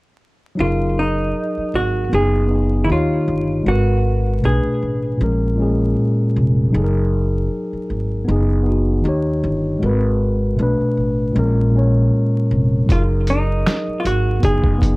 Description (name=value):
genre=lo-fi hip hop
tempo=78 BPM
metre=4/4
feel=swing 56% on 16ths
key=F# major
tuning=A4 = 436 Hz
part: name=archtop guitar, miked and amplified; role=melody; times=0.6-5.9, 12.9-15.0 s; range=D#4 to G#4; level=-22 LUFS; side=right 1 dB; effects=low-pass filter
part: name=mellow tine electric piano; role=accompaniment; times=0.6-15.0 s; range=A#2 to C#5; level=-19 LUFS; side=left 1 dB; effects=low-pass filter
part: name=upright bass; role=bass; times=0.6-15.0 s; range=E#1 to D#2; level=-19 LUFS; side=equal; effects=none
part: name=lo-fi sampler-style drum kit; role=drums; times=12.9-15.0 s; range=finger snaps, hi-hat, kick drum, snare drum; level=-18 LUFS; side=equal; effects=overdrive
room=light reverb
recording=dark, warm production, vinyl crackle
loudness=-15 LUFS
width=side -22 dB against mid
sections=0.6-15.0 A section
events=none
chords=0.6 F#69; 2.1 B6/F#; 2.9 D#7; 3.7 G#m9; 4.4 Bm7; 5.2 A#m7; 6.7 F#69; 8.3 B6/F#; 9.0 D#7; 9.8 G#m9; 10.6 Bm7; 11.4 A#m7; 12.9 F#69; 14.4 B6/F#